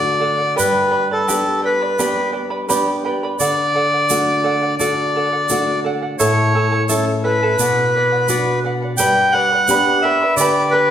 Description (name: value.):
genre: andean folk, Andean ensemble.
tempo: 86 BPM.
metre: 4/4.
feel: straight.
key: unclear.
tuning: A4 = 438 Hz.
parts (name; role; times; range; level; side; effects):
accordion; melody; 0.0-10.9 s; A4 to G5; -16 LUFS; equal; none.
charango; accompaniment; 0.0-10.9 s; E4 to B5; -21 LUFS; right 2 dB; none.
nylon-string guitar; accompaniment; 0.0-10.9 s; G2 to G4; -22 LUFS; left 1 dB; none.
egg shaker; percussion; 0.6-10.5 s; none; -24 LUFS; right 6 dB; none.
room: wet recital hall reverb, RT60 1.5 s.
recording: recorded in a church or concert hall.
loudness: -14 LUFS.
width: side -9 dB against mid.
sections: 0.0-9.0 A section; 9.0-10.9 B section.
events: none.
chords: 0.0 D; 0.6 G; 3.4 D; 6.2 A; 7.6 Bm; 9.0 G.